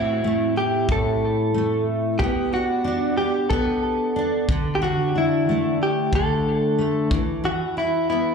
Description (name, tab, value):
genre	acoustic pop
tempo	92 BPM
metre	4/4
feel	swing 55% on 16ths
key	G major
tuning	A4 = 440 Hz
part	direct-recorded clean electric guitar	melody	0.0-8.3 s	E4 to A4	-23 LUFS	equal	wide subtle chorus, slapback echo, tape echo
part	fingerpicked steel-string acoustic guitar	accompaniment	0.0-8.3 s	A2 to G4	-23 LUFS	equal	double-tracked left and right, slapback echo
part	kick drum	drums	0.9-7.3 s	none	-26 LUFS	equal	none
room	light reverb, studio reverb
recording	live gig heard through the venue's PA, club reverb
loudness	-19 LUFS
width	side -6 dB against mid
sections	0.0-8.3 A section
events	none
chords	0.0 Am; 2.2 Gadd9/B; 4.5 D5; 7.1 Esus2